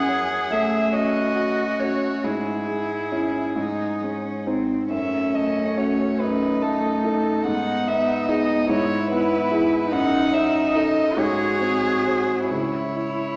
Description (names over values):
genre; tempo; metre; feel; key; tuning
classical, slow romantic movement for piano quartet; 44-50 BPM (dotted quarters); 6/8; rubato; unclear; A4 = 440 Hz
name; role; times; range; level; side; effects
warm violin; melody; 0.0-13.4 s; G#4 to F#5; -28 LUFS; equal; none
warm cello; second line; 0.0-13.4 s; B#3 to G#4; -29 LUFS; equal; none
warm grand piano; accompaniment; 0.0-13.4 s; C#2 to A4; -26 LUFS; equal; none
dark viola; accompaniment; 0.5-13.4 s; A3 to F#4; -30 LUFS; equal; none
room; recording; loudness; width
wet scoring stage reverb, RT60 1.6 s; heard from further back in the room, small speaker sound; -22 LUFS; mono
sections
0.0-13.4 A section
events
none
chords
0.0 F#m; 2.2 C#m/G#; 3.6 G#; 4.9 F#m; 6.2 D#dim/F#; 7.5 G#m; 8.7 E/G#; 9.9 D#m7b5/F#; 11.2 G#7; 12.5 C#m